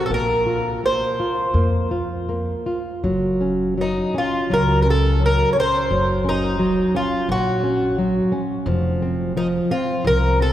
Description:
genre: fado-style ballad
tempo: 78-88 BPM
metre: 4/4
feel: rubato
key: Bb harmonic minor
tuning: A4 = 440 Hz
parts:
  - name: fingerpicked twelve-string acoustic guitar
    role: melody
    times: 0.0-10.5 s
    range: Eb4 to Db5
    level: -21 LUFS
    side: equal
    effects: none
  - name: flamenco guitar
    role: accompaniment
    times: 0.0-10.5 s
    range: F3 to F4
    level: -22 LUFS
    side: equal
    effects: none
  - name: upright bass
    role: bass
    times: 0.1-10.5 s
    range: F1 to F2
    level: -23 LUFS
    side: equal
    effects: none
room: wet cathedral reverb, RT60 4.6 s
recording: recorded in a church or concert hall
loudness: -18 LUFS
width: side -12 dB against mid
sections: 0.0-10.5 A section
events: none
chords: 0.1 Bbsus2; 3.0 Gb5; 5.9 Ebm7/Gb; 8.7 F5

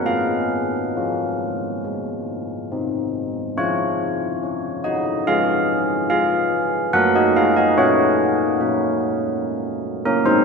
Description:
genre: classical, tune for church bells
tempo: 67-73 BPM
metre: 4/4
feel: straight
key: Db major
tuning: A4 = 440 Hz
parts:
  - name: carillon bells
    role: solo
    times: 0.0-10.4 s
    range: Gb3 to Gb5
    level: -18 LUFS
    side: equal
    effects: none
room: wet church reverb, RT60 2.7 s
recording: minimal, uncompressed stereo recording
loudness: -18 LUFS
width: side -4 dB against mid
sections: 0.0-3.6 A section; 3.6-10.4 B section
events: none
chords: 0.1 Db/Ab; 1.8 Ab; 3.6 Db; 6.9 Gb

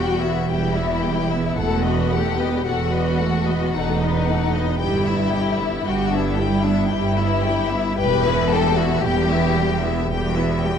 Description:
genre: classical, slow romantic movement for string orchestra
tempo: 56 BPM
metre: 3/4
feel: rubato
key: E minor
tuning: A4 = 440 Hz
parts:
  - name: rich chamber violin section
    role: melody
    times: 0.0-10.8 s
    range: D#5 to G5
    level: -28 LUFS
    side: left 6 dB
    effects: none
  - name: rich chamber violin section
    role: second line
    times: 0.0-10.1 s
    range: D4 to B4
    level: -24 LUFS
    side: left 6 dB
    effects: none
  - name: rich studio viola section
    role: accompaniment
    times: 0.0-10.8 s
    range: G3 to B4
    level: -26 LUFS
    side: equal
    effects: none
  - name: clear chamber double bass section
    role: bass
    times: 0.0-10.8 s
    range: E1 to G1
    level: -24 LUFS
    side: right 3 dB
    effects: none
  - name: rich studio cello section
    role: bass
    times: 0.0-10.8 s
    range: E2 to G2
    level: -24 LUFS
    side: right 3 dB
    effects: none
room: moderate scoring stage reverb, RT60 1.9 s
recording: dark, warm production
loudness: -18 LUFS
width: side -7 dB against mid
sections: 0.0-10.8 A section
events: none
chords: 0.0 Em; 1.6 B7/E; 4.8 Em/G; 8.0 Em

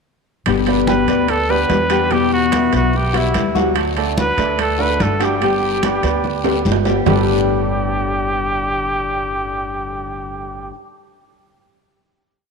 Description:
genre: latin, Cuban son and guajira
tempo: 145 BPM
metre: 4/4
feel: straight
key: G major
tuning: A4 = 437 Hz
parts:
  - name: flamenco guitar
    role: accompaniment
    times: 0.5-10.8 s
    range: G2 to G4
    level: -20 LUFS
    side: left 11 dB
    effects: none
  - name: upright bass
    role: bass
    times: 0.5-10.7 s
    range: G1 to E2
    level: -24 LUFS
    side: equal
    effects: none
  - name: congas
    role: percussion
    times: 0.5-7.2 s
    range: none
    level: -24 LUFS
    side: equal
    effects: none
  - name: guiro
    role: percussion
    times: 0.5-7.2 s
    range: none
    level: -33 LUFS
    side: left 13 dB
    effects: none
  - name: timbales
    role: percussion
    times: 0.5-7.2 s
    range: none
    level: -25 LUFS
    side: right 13 dB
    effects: none
  - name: warm grand piano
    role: arpeggios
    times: 0.7-10.7 s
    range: F#3 to G5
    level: -22 LUFS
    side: right 11 dB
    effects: none
  - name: breathy trumpet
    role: melody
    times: 0.9-10.7 s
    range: E4 to B4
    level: -21 LUFS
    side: equal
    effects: none
room: moderate plate reverb, RT60 2.4 s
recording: 1960s-style stereo with parts hard left and right, lossy compression artefacts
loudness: -15 LUFS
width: side -4 dB against mid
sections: 0.5-7.1 A section; 7.1-10.4 final chord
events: drum fill 6.5-7.1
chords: 0.5 G; 2.1 Emadd9; 3.8 D; 5.4 G; 7.1 Gadd9

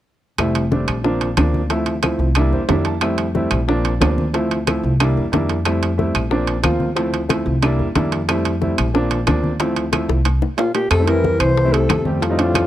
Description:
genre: Afro-Cuban jazz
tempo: 182 BPM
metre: 4/4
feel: straight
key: F major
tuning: A4 = 439 Hz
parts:
  - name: clear upright piano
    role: accompaniment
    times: 0.4-12.7 s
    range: E3 to A5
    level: -20 LUFS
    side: equal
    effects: none
  - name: upright bass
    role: bass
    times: 0.4-12.7 s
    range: F1 to F2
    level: -21 LUFS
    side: equal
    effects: none
  - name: bongos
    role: percussion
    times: 0.4-12.7 s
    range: none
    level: -25 LUFS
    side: left 9 dB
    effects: none
  - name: claves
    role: percussion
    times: 0.4-12.7 s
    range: none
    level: -29 LUFS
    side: left 6 dB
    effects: none
  - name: congas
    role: percussion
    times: 0.4-12.7 s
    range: none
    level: -26 LUFS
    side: left 1 dB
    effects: none
  - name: timbales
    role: percussion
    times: 0.4-12.7 s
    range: none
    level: -24 LUFS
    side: right 9 dB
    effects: none
  - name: breathy alto saxophone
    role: melody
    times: 10.6-12.7 s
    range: F4 to C5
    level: -19 LUFS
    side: left 1 dB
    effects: none
  - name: breathy trombone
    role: second line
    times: 10.6-12.7 s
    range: A2 to E3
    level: -24 LUFS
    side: left 5 dB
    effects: none
room: little or no reverb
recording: dry, close 1970s-style studio recording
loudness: -16 LUFS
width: side -12 dB against mid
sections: 0.4-10.9 A section; 10.9-12.7 B section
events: upright piano fill 2.4-3.0; drum fill 9.6-10.9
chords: 0.4 Fmaj7; 1.0 Bbadd9; 1.7 Dm7; 2.4 C7; 3.0 Fmaj7; 3.7 Bbadd9; 4.3 Dm7; 5.0 C7; 5.7 Fmaj7; 6.3 Bbadd9; 7.0 Dm7; 7.6 C7; 8.3 Fmaj7; 8.9 Bbadd9; 9.6 Dm7; 10.3 C7sus4; 10.9 Fmaj7

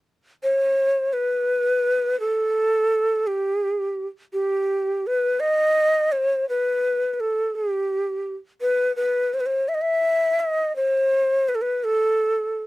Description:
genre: persian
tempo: 56 BPM (dotted quarters)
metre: 6/8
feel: straight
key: unclear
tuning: A4 = 439 Hz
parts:
  - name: breathy ney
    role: solo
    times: 0.4-12.6 s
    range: G4 to E5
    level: -20 LUFS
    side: equal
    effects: none
room: light reverb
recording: dry, close 1970s-style studio recording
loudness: -20 LUFS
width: side -18 dB against mid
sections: 0.1-12.7 A section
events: none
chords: none

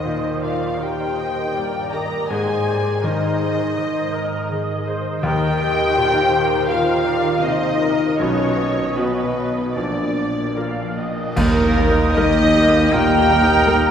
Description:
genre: cinematic, emotional film score for orchestra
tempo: 80 BPM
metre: 4/4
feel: rubato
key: Eb major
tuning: A4 = 440 Hz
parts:
  - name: muted symphonic violin section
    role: melody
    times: 0.0-13.7 s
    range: Eb4 to Bb5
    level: -26 LUFS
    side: left 2 dB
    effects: none
  - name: muted symphonic violin section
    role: second line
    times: 0.0-13.9 s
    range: Bb4 to Bb5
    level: -24 LUFS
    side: equal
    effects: none
  - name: bright grand piano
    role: accompaniment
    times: 0.0-13.9 s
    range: Bb1 to Bb4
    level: -25 LUFS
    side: equal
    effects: none
  - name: muted symphonic viola section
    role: accompaniment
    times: 0.0-13.7 s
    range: G3 to F5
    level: -27 LUFS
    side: right 1 dB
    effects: none
  - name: mellow French horn section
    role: sustained chords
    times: 0.0-13.9 s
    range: Bb3 to Bb4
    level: -23 LUFS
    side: left 2 dB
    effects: none
  - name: concert harp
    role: arpeggios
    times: 0.0-13.9 s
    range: Ab2 to Bb4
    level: -28 LUFS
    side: left 3 dB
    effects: none
  - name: muted symphonic cello section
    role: bass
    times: 0.0-13.9 s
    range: Eb2 to Eb3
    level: -25 LUFS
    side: right 2 dB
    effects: none
  - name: cymbal swell, clash cymbals and concert bass drum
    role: percussion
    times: 8.2-12.9 s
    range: none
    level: -26 LUFS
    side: right 1 dB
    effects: none
  - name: clear oboe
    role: second line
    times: 11.4-13.9 s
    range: Eb4 to Bb4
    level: -24 LUFS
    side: right 3 dB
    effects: none
  - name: muted symphonic double bass section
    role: bass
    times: 11.4-13.9 s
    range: Eb2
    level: -25 LUFS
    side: right 3 dB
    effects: none
  - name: bright flute section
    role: second line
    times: 12.9-13.9 s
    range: Bb5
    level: -24 LUFS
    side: right 4 dB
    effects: none
room: wet cathedral reverb, RT60 4.5 s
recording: recorded in a church or concert hall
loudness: -16 LUFS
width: side -8 dB against mid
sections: 0.0-11.4 A section; 11.4-13.9 A section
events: band accent 11.4-12.2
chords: 0.0 Eb; 2.3 Ab; 5.2 Eb; 8.2 Bsus2; 9.8 Bb; 11.4 Eb

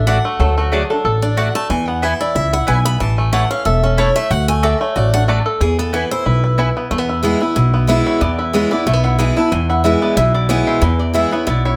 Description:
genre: bluegrass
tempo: 184 BPM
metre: 4/4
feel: swing 55% on 8ths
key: E mixolydian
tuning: A4 = 440 Hz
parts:
  - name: bluegrass banjo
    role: melody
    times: 0.0-11.8 s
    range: E3 to A4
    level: -23 LUFS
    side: equal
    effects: plate reverb
  - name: picked steel-string acoustic guitar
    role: accompaniment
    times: 0.0-11.8 s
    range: E2 to B5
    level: -21 LUFS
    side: equal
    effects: none
  - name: upright bass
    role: bass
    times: 0.0-11.8 s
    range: E1 to E2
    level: -19 LUFS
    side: equal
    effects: none
  - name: mandolin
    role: stabs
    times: 0.1-6.7 s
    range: A3 to A5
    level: -24 LUFS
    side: equal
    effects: none
  - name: lap resonator guitar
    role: second line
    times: 0.4-1.1, 7.9-11.8 s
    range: F#4 to A5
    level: -24 LUFS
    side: equal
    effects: none
room: light reverb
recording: none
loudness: -16 LUFS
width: mono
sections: 0.0-6.9 A section; 6.9-11.8 A section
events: steel-string acoustic guitar solo 0.0-6.9; resonator guitar played with a steel bar solo 6.9-11.8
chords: 0.0 D; 1.7 E; 3.0 A; 4.3 D; 5.6 E

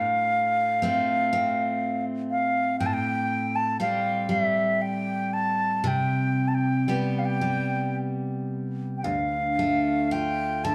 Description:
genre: celtic folk, Celtic slow air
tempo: 37-41 BPM (dotted quarters)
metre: 6/8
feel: rubato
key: unclear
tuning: A4 = 440 Hz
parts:
  - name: wooden flute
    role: melody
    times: 0.0-10.7 s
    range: E5 to A5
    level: -28 LUFS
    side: equal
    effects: none
  - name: picked steel-string acoustic guitar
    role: accompaniment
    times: 0.0-10.7 s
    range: D2 to G4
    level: -29 LUFS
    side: equal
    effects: none
room: wet large studio reverb, RT60 1.0 s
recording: band playing live in one room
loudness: -26 LUFS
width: mono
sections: 0.0-9.0 A section; 9.0-10.7 B section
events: none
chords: 0.0 F/A; 2.8 Am7; 5.8 C5; 9.0 Dm

